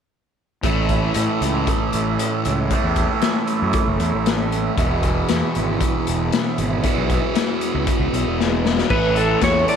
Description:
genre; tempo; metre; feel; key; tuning
psychedelic rock; 116 BPM; 4/4; straight; unclear; A4 = 440 Hz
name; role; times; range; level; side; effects
tonewheel organ; sustained chords; 0.6-9.8 s; E3 to E5; -28 LUFS; right 10 dB; slow rotary speaker
fuzz guitar; riff; 0.6-9.8 s; E2 to A3; -21 LUFS; right 1 dB; distortion, phaser
fuzz fingered electric bass; bass; 0.6-9.6 s; E1 to A2; -24 LUFS; right 1 dB; overdrive
raw garage drum kit; drums; 0.6-9.8 s; crash cymbal, hi-hat, kick drum, snare drum; -22 LUFS; left 3 dB; none
clean lap steel guitar; melody; 8.9-9.8 s; A4 to D5; -18 LUFS; equal; tape echo
room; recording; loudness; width
moderate spring reverb, RT60 1.6 s, studio reverb; 1960s-style stereo; -17 LUFS; side -7 dB against mid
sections
0.6-8.9 A section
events
drum fill 8.4-8.9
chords
0.6 A; 4.8 E; 8.9 A

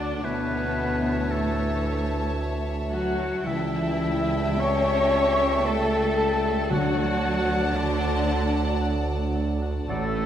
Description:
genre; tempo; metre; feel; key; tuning
classical; 56 BPM; 3/4; rubato; D major; A4 = 440 Hz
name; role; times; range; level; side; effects
dark chamber violin section; melody; 0.0-9.9 s; A5; -37 LUFS; equal; none
clear oboe; second line; 0.0-10.3 s; A4 to C#6; -34 LUFS; equal; none
dark clarinet; second line; 0.0-10.1 s; C#5 to E5; -37 LUFS; left 1 dB; none
large flute ensemble; second line; 0.0-10.3 s; A4 to C#6; -34 LUFS; equal; none
warm chamber violin section; second line; 0.0-9.9 s; C#5 to G5; -37 LUFS; left 2 dB; none
rich chamber viola section; accompaniment; 0.0-10.3 s; A3 to C#5; -34 LUFS; right 1 dB; none
warm bassoon; accompaniment; 0.0-10.0 s; E3 to G3; -35 LUFS; right 1 dB; none
mellow French horn section; sustained chords; 0.0-10.3 s; A3 to C#5; -28 LUFS; left 4 dB; none
concert harp; arpeggios; 0.0-10.3 s; A2 to A5; -37 LUFS; left 8 dB; none
mellow tuba; bass; 0.0-10.3 s; A1 to D2; -31 LUFS; right 3 dB; none
warm chamber cello section; bass; 0.0-10.3 s; A2 to C#4; -32 LUFS; right 1 dB; none
warm studio double bass section; bass; 0.0-10.3 s; A1 to D2; -29 LUFS; right 2 dB; none
timpani; percussion; 6.7-8.2 s; D3; -30 LUFS; left 2 dB; none
room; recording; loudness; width
moderate concert hall reverb, RT60 1.8 s; none; -22 LUFS; side -10 dB against mid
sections
0.0-10.3 A section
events
none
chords
0.2 A/D; 3.5 A7/C#; 6.7 D

